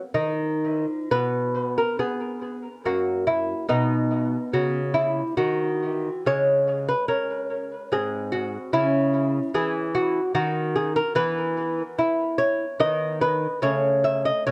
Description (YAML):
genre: classical, baroque-style dance for lute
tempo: 72 BPM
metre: 3/4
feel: rubato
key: unclear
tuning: A4 = 440 Hz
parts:
  - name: lute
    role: solo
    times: 0.0-14.5 s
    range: F#2 to E5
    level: -24 LUFS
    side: equal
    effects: tape echo
room: moderate studio reverb, RT60 0.5 s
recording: dark, warm production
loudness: -24 LUFS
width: mono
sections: 0.0-1.1 A section; 1.1-14.5 B section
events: none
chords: 0.0 N.C.; 2.8 F#7; 3.7 B; 6.3 C#5; 7.9 G#7; 8.7 C#m; 11.2 E5; 12.8 B/D#; 13.6 A/C#